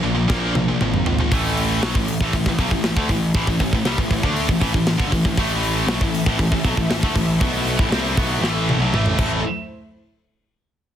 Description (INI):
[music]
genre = heavy metal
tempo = 118 BPM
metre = 4/4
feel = straight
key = A phrygian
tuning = A4 = 440 Hz
[part]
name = rich symphonic string section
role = sustained chords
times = 0.0-1.3, 5.4-9.4 s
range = F3 to E5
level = -32 LUFS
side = equal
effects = none
[part]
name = heavy high-gain guitar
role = riff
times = 0.0-9.4 s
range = G2 to D4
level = -21 LUFS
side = equal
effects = distortion
[part]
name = fuzz picked electric bass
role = bass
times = 0.0-9.4 s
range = G1 to D2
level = -25 LUFS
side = equal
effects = overdrive
[part]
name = tight metal drum kit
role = drums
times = 0.3-9.3 s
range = crash cymbal, hi-hat, kick drum, snare drum, toms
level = -22 LUFS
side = equal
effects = soft clipping on kick
[sound]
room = little or no reverb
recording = dense, heavily limited modern master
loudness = -17 LUFS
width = side -10 dB against mid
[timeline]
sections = 0.0-1.3 A section; 1.3-9.4 B section; 9.4-11.0 C section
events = drum fill 0.3-1.3, 8.4-9.4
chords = 0.0 Bb; 1.3 Am; 9.4 N.C.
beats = 0.30 0.81 | 1.32 1.83 2.33 2.84 | 3.35 3.86 4.37 4.87 | 5.38 5.89 6.40 6.90 | 7.41 7.92 8.43 8.94